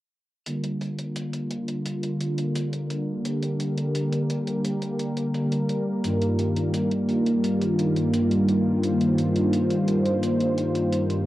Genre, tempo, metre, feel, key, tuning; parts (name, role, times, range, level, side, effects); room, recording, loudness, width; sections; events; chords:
synthwave; 86 BPM; 4/4; straight; A4 = 440 Hz
soft supersaw; sustained chords; 0.5-11.3 s; G2 to C5; -22 LUFS; equal; phaser, low-pass filter
electronic hi-hat; drums; 0.5-11.2 s; -39 LUFS; equal
moderate spring reverb, RT60 2.5 s; home recording on cassette; -22 LUFS; side -15 dB against mid
0.5-11.3 A section
filter sweep on supersaw synth 0.5-11.3
0.5 Gm7; 6.0 Ebadd9/G